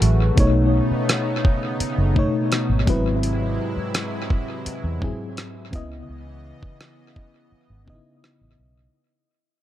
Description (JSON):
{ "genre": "contemporary R&B", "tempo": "84 BPM", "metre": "4/4", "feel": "straight", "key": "unclear", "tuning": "A4 = 440 Hz", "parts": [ { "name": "FM electric piano with auto-pan", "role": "accompaniment", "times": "0.0-9.0 s", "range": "G#2 to D#5", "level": "-24 LUFS", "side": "left 2 dB", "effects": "tape echo" }, { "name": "lush unison pad", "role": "sustained chords", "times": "0.0-8.9 s", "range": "B#2 to D#5", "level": "-30 LUFS", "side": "right 2 dB", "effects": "chorus" }, { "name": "vintage muted fingered electric bass", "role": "bass", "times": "0.0-8.9 s", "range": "F#1 to E2", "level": "-21 LUFS", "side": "equal", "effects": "none" }, { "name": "dusty soul sampler-style drum kit", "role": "drums", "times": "0.0-8.4 s", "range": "hi-hat, kick drum, rim click", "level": "-22 LUFS", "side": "equal", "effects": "tape echo" } ], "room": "light reverb", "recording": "echo-heavy mix", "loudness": "-19 LUFS", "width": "side -13 dB against mid", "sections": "0.0-8.9 A section", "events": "fade-out 0.0-8.9", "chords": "0.4 B9; 2.9 G#7alt; 5.7 C#m9" }